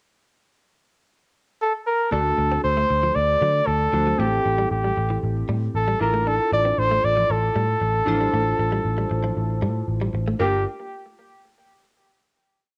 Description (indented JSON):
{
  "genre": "pop",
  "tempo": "116 BPM",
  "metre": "4/4",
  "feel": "straight",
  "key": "unclear",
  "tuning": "A4 = 439 Hz",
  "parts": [
    { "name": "clear flugelhorn", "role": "melody", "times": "1.6-10.6 s", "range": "G4 to D5", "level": "-24 LUFS", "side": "equal", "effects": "cassette tape, plate reverb" },
    { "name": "glassy digital keys", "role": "accompaniment", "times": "2.1-10.6 s", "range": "A3 to C5", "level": "-31 LUFS", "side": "equal", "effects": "chorus, cassette tape, plate reverb" },
    { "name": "direct-recorded clean electric guitar", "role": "riff", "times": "2.1-10.6 s", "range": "E3 to D4", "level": "-33 LUFS", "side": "equal", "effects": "subtle chorus, cassette tape" },
    { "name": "vintage muted picked electric bass", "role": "bass", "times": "2.1-10.6 s", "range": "G1 to D3", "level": "-27 LUFS", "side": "equal", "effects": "none" }
  ],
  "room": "moderate studio reverb, RT60 0.6 s",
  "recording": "home recording on cassette",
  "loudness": "-22 LUFS",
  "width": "mono",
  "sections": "0.1-2.1 pickup bar; 2.1-10.4 pre-chorus; 10.4-12.5 final chord",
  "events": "none",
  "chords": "0.1 N.C.; 2.1 D; 4.2 Am7; 6.0 Dmadd9/A; 10.4 Gm7"
}